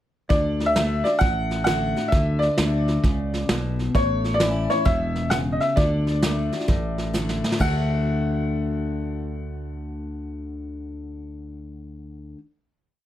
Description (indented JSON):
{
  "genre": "honky-tonk and classic country",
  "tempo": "132 BPM",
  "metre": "4/4",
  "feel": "swing 66% on 8ths",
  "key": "D major",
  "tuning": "A4 = 442 Hz",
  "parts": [
    { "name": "bright upright piano", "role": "melody", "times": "0.3-12.3 s", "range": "C#5 to F#5", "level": "-25 LUFS", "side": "equal", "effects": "none" },
    { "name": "picked steel-string acoustic guitar", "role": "accompaniment", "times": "0.3-12.4 s", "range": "A2 to F#4", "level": "-28 LUFS", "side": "left 2 dB", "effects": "none" },
    { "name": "fingered electric bass", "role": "bass", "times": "0.3-12.3 s", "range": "E1 to D2", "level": "-27 LUFS", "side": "equal", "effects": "none" },
    { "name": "vintage brush drum kit", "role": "drums", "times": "0.3-7.7 s", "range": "hi-hat, kick drum, ride cymbal, snare drum", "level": "-24 LUFS", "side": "right 1 dB", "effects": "none" }
  ],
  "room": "light reverb",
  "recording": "none",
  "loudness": "-20 LUFS",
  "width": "side -12 dB against mid",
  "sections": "0.3-7.6 interlude; 7.6-11.3 final chord",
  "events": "drum fill 7.1-7.6",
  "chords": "0.3 D; 4.0 A; 5.8 D"
}